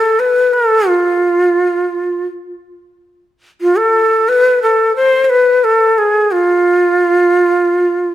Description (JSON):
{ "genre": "arabic", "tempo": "88 BPM", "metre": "4/4", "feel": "straight", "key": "unclear", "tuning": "A4 = 444 Hz", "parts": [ { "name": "breathy bright ney", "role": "solo", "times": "0.0-8.1 s", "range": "F4 to C5", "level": "-10 LUFS", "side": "equal", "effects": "none" } ], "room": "moderate recital hall reverb, RT60 1.7 s", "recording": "none", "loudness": "-10 LUFS", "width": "side -13 dB against mid", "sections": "0.0-8.1 A section", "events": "none", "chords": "none" }